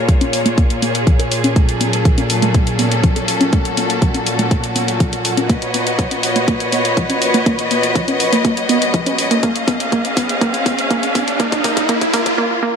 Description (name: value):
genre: melodic techno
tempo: 122 BPM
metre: 4/4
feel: straight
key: unclear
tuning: A4 = 441 Hz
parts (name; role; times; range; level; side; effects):
- clear studio string section; sustained chords; 0.0-12.4 s; Gb3 to F5; -19 LUFS; left 1 dB; sidechain pumping, low-pass filter
- bowed-like drone; drone; 0.0-12.4 s; Bb2; -23 LUFS; equal; built-in reverb, sidechain pumping
- warbly dusty pluck; arpeggios; 0.1-12.7 s; F3 to Bb4; -20 LUFS; right 1 dB; chorus, sidechain pumping, ping-pong delay
- electronic hi-hat; drums; 0.1-12.4 s; none; -22 LUFS; left 2 dB; high-pass filter on hats
- electronic kick drum; drums; 0.1-12.4 s; none; -16 LUFS; equal; none
- riser and swell; sound effects; 7.6-12.8 s; none; -22 LUFS; right 1 dB; none
room: moderate lush hall reverb, RT60 2.1 s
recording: high-pass filter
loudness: -14 LUFS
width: side -6 dB against mid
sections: 0.0-12.8 A section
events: build-up 0.0-12.8; filter sweep on synth arpeggio sound 0.0-12.8; filter sweep 0.0-12.8; drum fill 5.5-12.4; riser 7.6-12.4; swell 12.4-12.8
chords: 0.0 Bbm; 1.6 Gbm; 5.5 B; 9.4 Db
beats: 0.09 0.58 1.07 | 1.56 2.05 2.54 3.04 | 3.53 4.02 4.51 5.00 | 5.50 5.99 6.48 6.97 | 7.46 7.96 8.45 8.94 | 9.43 9.92 10.41 10.90 | 11.40 11.89 12.38